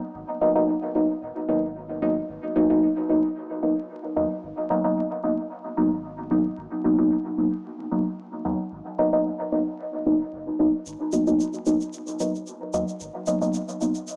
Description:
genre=dub techno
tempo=112 BPM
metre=4/4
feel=swing 53% on 16ths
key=G# minor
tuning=A4 = 442 Hz
part: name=soft dub sub bass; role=bass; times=0.1-13.1 s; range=D#1 to D#2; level=-45 LUFS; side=equal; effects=none
part: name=deep mellow chord stab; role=stabs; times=0.4-13.9 s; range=F#3 to D#4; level=-25 LUFS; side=equal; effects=chorus, phaser, dub echo
part: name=egg shaker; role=percussion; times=10.9-14.2 s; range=none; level=-43 LUFS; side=equal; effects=none
room=moderate spring reverb, RT60 1.1 s, small room ambience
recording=dry, gritty hardware recording, vinyl crackle, small speaker sound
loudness=-25 LUFS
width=mono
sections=0.0-14.2 A section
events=none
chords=0.0 G#m7

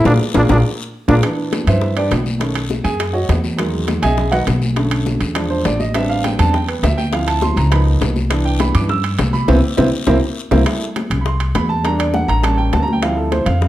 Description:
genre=Afro-Cuban jazz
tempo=204 BPM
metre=4/4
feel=straight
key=unclear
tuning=A4 = 440 Hz
part: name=warm trombone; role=melody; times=0.0-1.2 s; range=D4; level=-18 LUFS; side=equal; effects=none
part: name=upright bass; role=bass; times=0.0-13.7 s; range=A1 to G2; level=-17 LUFS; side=equal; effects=none
part: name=warm baby grand piano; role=accompaniment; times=0.1-13.7 s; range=D3 to E6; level=-19 LUFS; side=right 2 dB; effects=none
part: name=bongos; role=percussion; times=0.1-13.7 s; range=none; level=-25 LUFS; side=left 5 dB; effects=none
part: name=congas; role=percussion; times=0.1-13.7 s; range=none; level=-24 LUFS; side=left 1 dB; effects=none
part: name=guiro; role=percussion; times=0.1-10.6 s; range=none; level=-33 LUFS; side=left 6 dB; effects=none
part: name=timbales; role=percussion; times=0.1-13.6 s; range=none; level=-26 LUFS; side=right 6 dB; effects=none
room=moderate large studio reverb, RT60 0.9 s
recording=dark, warm production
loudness=-14 LUFS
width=side -14 dB against mid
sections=0.0-1.2 A section; 1.2-10.7 A section; 10.7-13.7 A section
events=trombone solo 0.0-1.2; band accent 0.1-1.2, 9.5-10.7; drum fill 0.4-1.2, 9.5-10.7; grand piano solo 1.2-13.7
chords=0.1 Bb7(no3); 1.2 Cmaj9; 2.4 B9; 3.6 Emaj9#11; 4.8 Bm9; 5.4 E7b9; 5.9 Am11; 7.1 Dm9; 7.7 Db13; 8.3 Cmaj9; 10.1 C7; 10.7 C6; 11.8 Em7b5; 12.4 A7b9; 13.0 Dm11

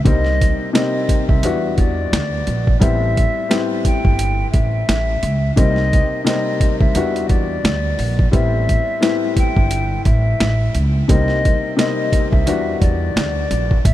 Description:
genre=hip hop, boom-bap hip-hop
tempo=87 BPM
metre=4/4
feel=swing 56% on 16ths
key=A minor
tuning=A4 = 439 Hz
part: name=dark upright piano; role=accompaniment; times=0.0-13.8 s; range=E2 to F#4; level=-21 LUFS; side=left 3 dB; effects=cassette tape
part: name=mellow hollow concert flute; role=melody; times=0.1-13.9 s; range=D5 to G5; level=-23 LUFS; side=left 1 dB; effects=ping-pong delay
part: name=upright bass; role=bass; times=0.1-13.9 s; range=G1 to E2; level=-19 LUFS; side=right 1 dB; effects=none
part: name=boom bap sampler-style drum kit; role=drums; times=0.1-13.9 s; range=hi-hat, kick drum, snare drum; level=-18 LUFS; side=equal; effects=none
room=light reverb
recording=none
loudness=-15 LUFS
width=side -14 dB against mid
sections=0.0-13.9 A section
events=none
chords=0.1 Cm7; 1.4 Em7; 2.8 Am7; 5.6 Cm7; 7.0 Em7; 8.3 Am7; 11.1 Cm7; 12.5 Em7

